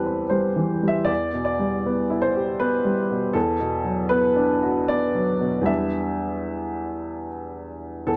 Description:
neoclassical minimalist piano; 74-80 BPM; 3/4; rubato; E minor; A4 = 440 Hz
warm upright piano; solo; 0.0-8.2 s; E2 to E5; -24 LUFS; equal
moderate spring reverb, RT60 1.7 s; dark, warm production; -23 LUFS; mono
0.0-8.2 A section
0.0 C6/E; 1.1 Em7; 3.3 Bm7/E; 5.7 Em7

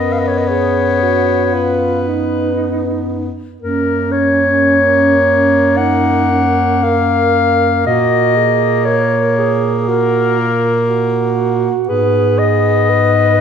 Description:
classical, lyrical piece for single-reed quartet; 52-60 BPM; 4/4; rubato; F# major; A4 = 440 Hz
mellow clarinet; melody; 0.0-13.4 s; A#4 to F#5; -14 LUFS; left 3 dB
mellow alto saxophone; second line; 0.0-13.4 s; C#4 to B4; -18 LUFS; right 7 dB
clear tenor saxophone; accompaniment; 0.0-13.4 s; A#3 to B3; -19 LUFS; left 2 dB
dark bass clarinet; bass; 0.0-13.4 s; F#2 to A#2; -19 LUFS; right 1 dB
wet recital hall reverb, RT60 1.4 s; recorded in a church or concert hall; -11 LUFS; side -7 dB against mid
0.0-13.4 A section
0.0 B/F#; 3.6 F#; 7.9 F#/A#; 11.9 G#m

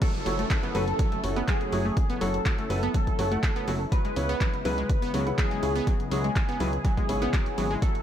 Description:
progressive house; 123 BPM; 4/4; straight; F# minor; A4 = 439 Hz
wide unison lead; melody; 0.0-8.0 s; G#4 to B4; -32 LUFS; equal; wide subtle chorus, sidechain pumping, tape echo
soft synth bell; second line; 0.0-8.0 s; G#4 to B4; -39 LUFS; left 6 dB; chorus, phaser, sidechain pumping, tape echo
warm analog pad; sustained chords; 0.0-8.0 s; C#3 to E4; -37 LUFS; left 2 dB; chorus, sidechain pumping
analog pluck; arpeggios; 0.0-7.9 s; F#3 to B3; -33 LUFS; equal; chorus, sidechain pumping, tape echo
big-room dance drum kit; drums; 0.0-8.0 s; crash cymbal, handclaps, hi-hat; -36 LUFS; equal; studio reverb
electronic kick drum; drums; 0.0-7.9 s; -26 LUFS; equal; studio reverb
downlifter; sound effects; 0.0-3.9 s; -40 LUFS; right 1 dB
warm baby grand piano; stabs; 0.3-7.7 s; C#3 to F#5; -34 LUFS; right 1 dB; sidechain pumping, tape echo
fat analog bass; bass; 0.3-7.8 s; F#1 to C#2; -30 LUFS; equal; tube saturation, sidechain pumping
little or no reverb; -24 LUFS; side -10 dB against mid
0.0-8.0 A section
drop 0.0-8.0
0.0 F#m7; 3.9 C#m7

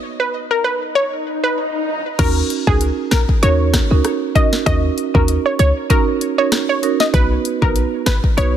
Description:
dancehall; 97 BPM; 4/4; swing 56% on 16ths; Eb minor; A4 = 440 Hz
swell; sound effects; 0.6-2.2 s; -24 LUFS; left 2 dB
analog pluck; melody; 0.2-8.6 s; Ab4 to Eb5; -20 LUFS; equal; chorus, ping-pong delay
marimba with medium mallets; accompaniment; 2.2-8.5 s; B3 to B4; -21 LUFS; right 9 dB
short 808-style bass; bass; 2.2-8.6 s; Ab1 to Eb2; -16 LUFS; left 1 dB
afro-pop drum kit; drums; 2.2-8.5 s; crash cymbal, hi-hat, kick drum, rim click, snare drum; -18 LUFS; left 1 dB
little or no reverb; dense, heavily limited modern master; -14 LUFS; side -10 dB against mid
0.0-2.2 A section; 2.2-8.6 B section
stop 0.0-2.2; swell 0.6-2.2
0.0 N.C.; 2.2 Ebm7; 7.1 B

